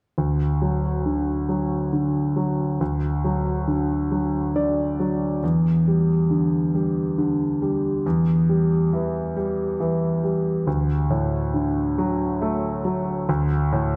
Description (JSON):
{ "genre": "pop", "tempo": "46 BPM (dotted quarters)", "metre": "6/8", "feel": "straight", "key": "unclear", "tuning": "A4 = 440 Hz", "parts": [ { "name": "clear grand piano", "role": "solo", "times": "0.2-14.0 s", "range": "D2 to D5", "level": "-22 LUFS", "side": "equal", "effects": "digital delay" } ], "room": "wet scoring stage reverb, RT60 2.1 s", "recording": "none", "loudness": "-23 LUFS", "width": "mono", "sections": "0.2-10.7 A section; 10.7-14.0 B section", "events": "grand piano fill 4.1-5.4", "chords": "0.2 D; 5.4 Em7; 8.1 Em; 10.7 D", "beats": "| 0.18 1.49 | 2.81 4.12 | 5.43 6.74 | 8.05 9.36 | 10.67 11.98 | 13.29" }